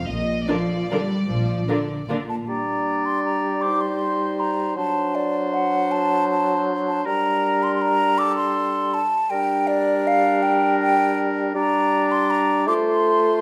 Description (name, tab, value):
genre	classical, orchestral ballroom waltz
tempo	140-173 BPM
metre	3/4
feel	rubato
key	G minor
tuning	A4 = 439 Hz
part	warm studio violin section	melody	0.0-2.1 s	D5 to Eb5	-33 LUFS	equal	none
part	dark studio double bass section	bass	0.0-1.6 s	Bb1	-31 LUFS	equal	none
part	dark studio cello section	bass	0.1-2.5 s	Bb2 to G3	-29 LUFS	equal	none
part	dark studio violin section	second line	0.5-2.2 s	F4 to Bb4	-34 LUFS	equal	none
part	warm studio viola section	accompaniment	0.5-2.2 s	D3 to D4	-30 LUFS	equal	none
part	mellow hollow concert flute	second line	2.3-13.4 s	D5 to D6	-24 LUFS	equal	none
part	bright clarinet	second line	2.5-13.4 s	D4 to F4	-30 LUFS	equal	none
part	warm oboe	second line	2.5-13.4 s	A4 to D5	-29 LUFS	equal	none
part	mellow bassoon	accompaniment	2.5-13.4 s	F#3 to A3	-27 LUFS	equal	none
room	wet recital hall reverb, RT60 1.4 s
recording	none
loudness	-21 LUFS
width	mono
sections	0.0-2.5 A section; 2.5-13.4 B section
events	none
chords	0.1 Bb; 2.5 Gm; 4.8 D7/F#; 7.1 Gm; 12.7 F/A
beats	| 0.08 0.48 0.90 | 1.29 1.69 2.10 | 2.48 2.86 3.26 | 3.63 4.01 4.40 | 4.77 5.15 5.54 | 5.92 6.30 6.69 | 7.06 7.43 7.82 | 8.19 8.56 8.95 | 9.31 9.68 10.07 | 10.43 10.80 11.18 | 11.55 11.93 12.31 | 12.68 13.05